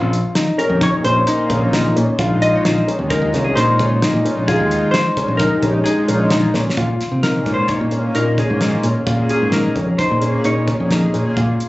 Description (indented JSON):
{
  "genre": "progressive instrumental, band music in an uneven meter",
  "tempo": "131 BPM",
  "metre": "5/4",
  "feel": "straight",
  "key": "Bb minor",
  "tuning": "A4 = 439 Hz",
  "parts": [
    { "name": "dark concert grand piano", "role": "arpeggios", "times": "0.0-11.7 s", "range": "Db4 to F4", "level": "-21 LUFS", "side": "left 1 dB", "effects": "none" },
    { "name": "modern bright fingered electric bass", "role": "bass", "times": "0.0-11.5 s", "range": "Bb1 to C3", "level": "-19 LUFS", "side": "equal", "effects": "none" },
    { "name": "damped 70s drum kit", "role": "drums", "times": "0.1-11.7 s", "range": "hi-hat, kick drum, snare drum", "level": "-22 LUFS", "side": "equal", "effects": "none" },
    { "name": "vintage hollow-body jazz guitar", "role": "melody", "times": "0.6-10.9 s", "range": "Ab4 to Eb5", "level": "-21 LUFS", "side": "left 1 dB", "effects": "tape echo" },
    { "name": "chorused pulse-width pad", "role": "accompaniment", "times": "0.6-11.4 s", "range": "Bb2 to Ab4", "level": "-21 LUFS", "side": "equal", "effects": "none" }
  ],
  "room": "moderate studio ambience, RT60 0.5 s",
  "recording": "recorded on a phone in the room, club reverb, compression, nothing above 8.0 kHz",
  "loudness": "-14 LUFS",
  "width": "side -18 dB against mid",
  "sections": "0.0-6.8 A section; 6.8-11.7 B section",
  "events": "drum fill 6.5",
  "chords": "0.0 Cm7/Bb; 2.2 Fm7/Bb; 6.8 Db; 9.1 Bbm7",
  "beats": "0.36 0.82 1.28 1.74 | 2.19 2.65 3.11 3.57 4.02 | 4.48 4.94 5.40 5.86 6.32 | 6.77 7.23 7.69 8.15 8.61 | 9.07 9.53 9.99 10.45 10.90 | 11.37"
}